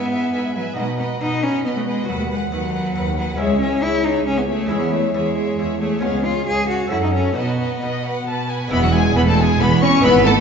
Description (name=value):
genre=classical, baroque-style concerto movement with solo episodes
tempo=136 BPM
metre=3/4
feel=straight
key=E major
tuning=A4 = 439 Hz
part: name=clear cello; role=melody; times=0.0-10.4 s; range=F#3 to G#4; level=-21 LUFS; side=left 1 dB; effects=none
part: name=rich chamber violin section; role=melody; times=0.0-10.3 s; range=E5 to C#6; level=-28 LUFS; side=left 3 dB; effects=none
part: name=rich chamber violin section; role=second line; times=0.0-10.4 s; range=F#4 to A5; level=-24 LUFS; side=left 4 dB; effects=none
part: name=lute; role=accompaniment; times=0.0-10.4 s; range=D#2 to F#4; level=-28 LUFS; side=right 1 dB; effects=none
part: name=rich chamber viola section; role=accompaniment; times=0.0-10.3 s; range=B3 to B4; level=-28 LUFS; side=right 3 dB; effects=none
part: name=warm chamber cello section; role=bass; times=0.0-10.4 s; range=C#2 to B2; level=-24 LUFS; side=right 2 dB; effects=none
part: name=rich chamber double bass section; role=bass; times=8.7-10.4 s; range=E1 to G#1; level=-19 LUFS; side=right 3 dB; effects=none
room=wet recital hall reverb, RT60 1.5 s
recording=heard from further back in the room, nothing above 7.7 kHz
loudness=-17 LUFS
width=side -6 dB against mid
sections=0.0-8.7 A section; 8.7-10.4 B section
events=none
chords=0.0 E/G#; 0.8 B; 2.1 B/D#; 3.4 C#m; 4.7 C#m/E; 6.0 C#; 6.9 F#m; 7.4 B; 8.7 E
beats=0.34 | 0.78 1.21 1.65 | 2.08 2.52 2.96 | 3.39 3.83 4.27 | 4.71 5.14 5.59 | 6.03 6.47 6.91 | 7.37 7.82 8.27 | 8.71 9.16 9.60 | 10.04